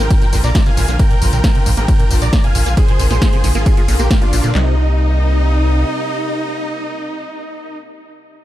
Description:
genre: uplifting trance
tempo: 135 BPM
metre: 4/4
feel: straight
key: C minor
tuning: A4 = 440 Hz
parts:
  - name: big supersaw lead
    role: melody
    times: 0.0-7.8 s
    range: Bb3 to Bb5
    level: -22 LUFS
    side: equal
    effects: sidechain pumping, tape echo
  - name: rich studio string section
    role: sustained chords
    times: 0.0-7.8 s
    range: C3 to F4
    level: -27 LUFS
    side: left 1 dB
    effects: sidechain pumping
  - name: liquid acid bass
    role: arpeggios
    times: 0.0-4.8 s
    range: Bb1 to Bb3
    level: -23 LUFS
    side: right 2 dB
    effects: phaser, sidechain pumping, tape echo
  - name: gritty driven synth bass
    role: bass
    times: 0.0-5.8 s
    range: Ab1 to Bb2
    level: -15 LUFS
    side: equal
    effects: sidechain pumping
  - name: house drum kit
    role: drums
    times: 0.1-4.7 s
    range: handclaps, kick drum, snare drum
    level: -14 LUFS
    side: equal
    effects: none
  - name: house drum kit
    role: drums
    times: 0.1-4.5 s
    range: hi-hat, ride cymbal, snare drum, tambourine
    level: -23 LUFS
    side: left 1 dB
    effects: sidechain pumping on hats, sidechain pumping on perc, sidechain pumping on cymbals
room: little or no reverb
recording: dark, warm production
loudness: -12 LUFS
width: side -14 dB against mid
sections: 0.0-4.5 A section; 4.5-8.1 B section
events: drop 0.0-4.5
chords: 0.0 Bb; 4.5 Cm7

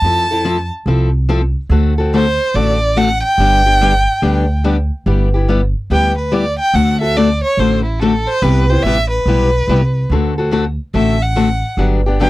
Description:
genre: acoustic string swing (jazz manouche)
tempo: 143 BPM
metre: 4/4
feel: swing 64% on 8ths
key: G major from 5.1 s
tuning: A4 = 441 Hz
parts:
  - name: rich violin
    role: melody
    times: 0.0-12.3 s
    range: E4 to A5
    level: -16 LUFS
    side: right 1 dB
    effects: none
  - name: picked steel-string acoustic guitar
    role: accompaniment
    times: 0.0-12.3 s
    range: C3 to A4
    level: -16 LUFS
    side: left 3 dB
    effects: none
  - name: upright bass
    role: bass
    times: 0.0-12.3 s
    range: G1 to F2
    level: -16 LUFS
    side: right 1 dB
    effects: none
room: light reverb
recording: dry, close 1970s-style studio recording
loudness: -12 LUFS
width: side -17 dB against mid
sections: 0.0-5.1 A section; 5.1-12.3 B section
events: violin solo 5.1-12.3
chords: 0.0 Fmaj7; 1.7 D7; 3.4 G; 5.1 G6; 6.7 D7; 8.4 Cmaj7; 10.1 D7; 11.8 Gmaj7

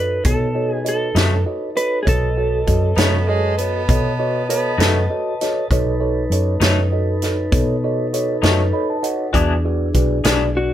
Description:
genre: slow blues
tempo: 66 BPM (dotted quarters)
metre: 12/8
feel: straight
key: B mixolydian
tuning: A4 = 440 Hz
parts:
  - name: electric slide guitar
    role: melody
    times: 0.0-3.9, 10.6-10.7 s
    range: F#4 to B4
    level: -22 LUFS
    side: right 2 dB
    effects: none
  - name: mellow tine electric piano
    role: accompaniment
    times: 0.0-10.7 s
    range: F#4 to B5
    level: -23 LUFS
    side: right 1 dB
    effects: phaser
  - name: mellow tonewheel organ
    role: sustained chords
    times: 0.0-10.7 s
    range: D4 to A5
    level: -26 LUFS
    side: equal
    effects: slow rotary speaker
  - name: vintage muted fingered electric bass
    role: bass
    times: 0.0-10.7 s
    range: B1 to B2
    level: -20 LUFS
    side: equal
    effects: none
  - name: natural country drum kit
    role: drums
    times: 0.2-10.4 s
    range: hi-hat, kick drum, snare drum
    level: -20 LUFS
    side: equal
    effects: none
  - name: electric guitar through a small old amp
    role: accompaniment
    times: 1.2-10.4 s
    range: B2 to G#4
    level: -22 LUFS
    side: left 4 dB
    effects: tremolo
  - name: clear tenor saxophone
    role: second line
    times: 3.0-5.1 s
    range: G#3 to B3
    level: -24 LUFS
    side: right 4 dB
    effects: none
room: light reverb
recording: band playing live in one room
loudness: -16 LUFS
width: side -11 dB against mid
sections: 0.0-10.7 A section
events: tine electric piano fill 8.4-9.3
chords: 0.0 B7; 9.3 E7

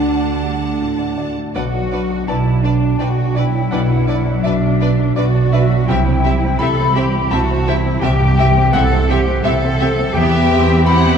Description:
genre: cinematic, emotional film score for orchestra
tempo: 84 BPM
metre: 3/4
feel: rubato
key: unclear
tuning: A4 = 441 Hz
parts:
  - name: rich studio violin section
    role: melody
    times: 0.0-11.2 s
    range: D5 to A5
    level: -28 LUFS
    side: left 2 dB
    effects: none
  - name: mellow cor anglais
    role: second line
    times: 0.0-1.1 s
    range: D4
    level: -35 LUFS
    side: right 4 dB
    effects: none
  - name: rich studio violin section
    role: second line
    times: 0.0-11.2 s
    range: E4 to F#5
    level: -28 LUFS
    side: left 1 dB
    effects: none
  - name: clear grand piano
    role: accompaniment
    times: 0.0-11.2 s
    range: B1 to B5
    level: -22 LUFS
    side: left 2 dB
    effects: none
  - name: warm studio viola section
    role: accompaniment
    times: 0.0-11.2 s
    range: B3 to D4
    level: -26 LUFS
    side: right 4 dB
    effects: none
  - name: dark French horn section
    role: sustained chords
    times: 0.0-11.2 s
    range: C3 to B4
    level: -27 LUFS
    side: left 3 dB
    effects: none
  - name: concert harp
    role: arpeggios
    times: 0.0-11.2 s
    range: B2 to D6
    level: -23 LUFS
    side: left 7 dB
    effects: none
  - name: rich studio cello section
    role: bass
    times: 0.0-11.2 s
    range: D3 to A4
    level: -22 LUFS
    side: right 2 dB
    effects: none
  - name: warm studio double bass section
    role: bass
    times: 0.0-11.2 s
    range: B1 to E2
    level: -17 LUFS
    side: right 4 dB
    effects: none
  - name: mellow hollow flute section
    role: second line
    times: 1.2-11.2 s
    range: D5 to B5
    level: -23 LUFS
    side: left 7 dB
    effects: none
room: wet scoring stage reverb, RT60 1.7 s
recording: dark, warm production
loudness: -13 LUFS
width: side -7 dB against mid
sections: 0.0-1.6 A section; 1.6-11.2 B section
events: none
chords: 0.0 D; 1.6 Bm; 5.9 C; 10.2 Em

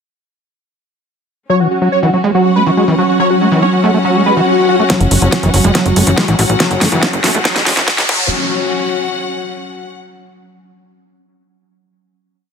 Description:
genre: psychedelic trance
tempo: 141 BPM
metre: 4/4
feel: straight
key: unclear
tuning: A4 = 439 Hz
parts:
  - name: wide unison lead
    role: melody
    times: 1.5-4.9 s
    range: F#4 to C#5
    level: -16 LUFS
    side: equal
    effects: phaser, sidechain pumping, tape echo
  - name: pulsing gated texture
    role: sustained chords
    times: 1.7-8.1 s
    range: F#3 to C#4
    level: -19 LUFS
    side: right 2 dB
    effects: chorus, built-in reverb, sidechain pumping
  - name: overdriven acid bass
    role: riff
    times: 1.5-8.3 s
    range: E3 to F#4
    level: -16 LUFS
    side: moving between left 5 dB and right 5 dB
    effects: distortion, auto-pan, sidechain pumping, tape echo
  - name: rich symphonic string section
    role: texture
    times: 1.5-10.0 s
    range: C#4 to F#5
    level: -20 LUFS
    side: left 4 dB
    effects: sidechain pumping
  - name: swell and riser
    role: sound effects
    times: 4.2-8.3 s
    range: none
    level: -20 LUFS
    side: left 2 dB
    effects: none
  - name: big-room dance drum kit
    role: drums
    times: 4.9-8.2 s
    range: crash cymbal, hi-hat, snare drum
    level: -17 LUFS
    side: equal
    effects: overdrive
  - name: electronic kick drum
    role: drums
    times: 4.9-8.2 s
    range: none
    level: -14 LUFS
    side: equal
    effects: overdrive, high-pass filter on kick
  - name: tight sequencer bass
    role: bass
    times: 5.0-8.3 s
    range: E1 to C#2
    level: -15 LUFS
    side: equal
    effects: none
room: moderate lush hall reverb, RT60 2.3 s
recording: high-pass filter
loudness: -10 LUFS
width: side -6 dB against mid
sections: 1.5-4.9 intro; 4.9-8.3 build; 8.3-10.0 final note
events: swell 4.2-4.9; build-up 4.9-8.3; drum fill 4.9-8.3; filter sweep on acid bass 4.9-8.3; filter sweep 4.9-8.3; riser 6.2-8.3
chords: 1.5 F#5

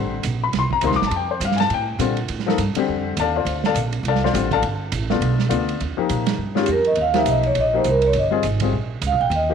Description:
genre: modal jazz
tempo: 205 BPM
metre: 4/4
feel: swing 59% on 8ths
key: D phrygian, C phrygian from 5.8 s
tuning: A4 = 444 Hz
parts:
  - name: warm upright piano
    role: accompaniment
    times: 0.0-9.5 s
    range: C3 to D6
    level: -22 LUFS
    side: left 9 dB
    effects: none
  - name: upright bass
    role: bass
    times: 0.0-9.5 s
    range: G1 to Bb2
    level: -24 LUFS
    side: right 2 dB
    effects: none
  - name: vintage drum kit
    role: drums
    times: 0.2-9.4 s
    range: hi-hat, kick drum, ride cymbal, snare drum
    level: -27 LUFS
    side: right 12 dB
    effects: none
  - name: vibraphone with medium mallets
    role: melody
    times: 6.6-9.5 s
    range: G4 to G5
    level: -19 LUFS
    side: right 2 dB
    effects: none
room: moderate spring reverb, RT60 2.0 s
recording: 1960s-style stereo with parts hard left and right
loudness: -18 LUFS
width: side -7 dB against mid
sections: 0.0-5.8 A section; 5.8-9.5 A section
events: vibraphone solo 5.8-9.5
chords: 0.0 Dm7; 4.6 G7; 5.8 Cm7

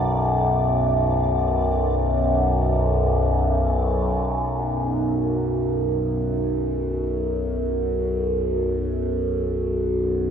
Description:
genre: ambient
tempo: free time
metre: none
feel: none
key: B minor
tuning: A4 = 440 Hz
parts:
  - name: overtone-sweeping drone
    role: drone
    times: 0.0-10.3 s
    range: B1 to F#2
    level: -20 LUFS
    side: equal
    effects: chorus, built-in reverb, phaser
  - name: flickering grainy texture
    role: texture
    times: 0.0-4.6 s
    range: D5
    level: -40 LUFS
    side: equal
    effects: built-in reverb
room: wet huge ambient reverb, RT60 7.0 s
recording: faint mains hum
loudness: -20 LUFS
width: side -8 dB against mid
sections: 0.0-4.6 A section; 4.6-10.3 B section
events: none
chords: 0.0 Bm

